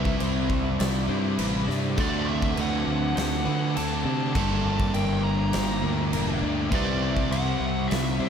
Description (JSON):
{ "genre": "rock, shoegaze and dream pop", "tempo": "101 BPM", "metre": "4/4", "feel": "straight", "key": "unclear", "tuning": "A4 = 441 Hz", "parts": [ { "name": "nasal lead guitar with a parked wah", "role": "melody", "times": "0.0-8.3 s", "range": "D5 to Bb5", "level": "-33 LUFS", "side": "equal", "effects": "overdrive, analog delay" }, { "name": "airy breathy pad", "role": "sustained chords", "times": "0.0-8.3 s", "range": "Bb3 to D6", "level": "-36 LUFS", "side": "left 1 dB", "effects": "chorus" }, { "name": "direct-recorded clean electric guitar", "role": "arpeggios", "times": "0.0-8.3 s", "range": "A4 to D5", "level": "-37 LUFS", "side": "left 10 dB", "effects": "lush chorus, analog delay" }, { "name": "biting overdriven guitar", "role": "riff", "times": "0.0-8.3 s", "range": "G2 to F#4", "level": "-33 LUFS", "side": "equal", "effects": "none" }, { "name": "overdriven semi-hollow guitar", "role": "riff", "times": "0.0-8.3 s", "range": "G2 to G4", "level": "-30 LUFS", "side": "right 9 dB", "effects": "reverse reverb" }, { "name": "thick fuzz guitar", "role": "riff", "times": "0.0-8.3 s", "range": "G2 to D4", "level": "-30 LUFS", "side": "left 10 dB", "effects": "distortion, wide subtle chorus" }, { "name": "growling fingered electric bass", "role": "bass", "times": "0.0-8.3 s", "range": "E1 to D3", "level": "-29 LUFS", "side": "equal", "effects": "overdrive" }, { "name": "big rock drum kit", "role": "drums", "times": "0.1-8.1 s", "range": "crash cymbal, kick drum, snare drum", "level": "-30 LUFS", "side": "right 1 dB", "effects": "none" } ], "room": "light reverb, studio reverb", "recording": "none", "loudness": "-23 LUFS", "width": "side -7 dB against mid", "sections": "0.0-8.3 A section", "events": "none", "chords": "0.0 Cmaj9; 2.0 D7; 4.3 Gm6; 6.7 Cmaj9" }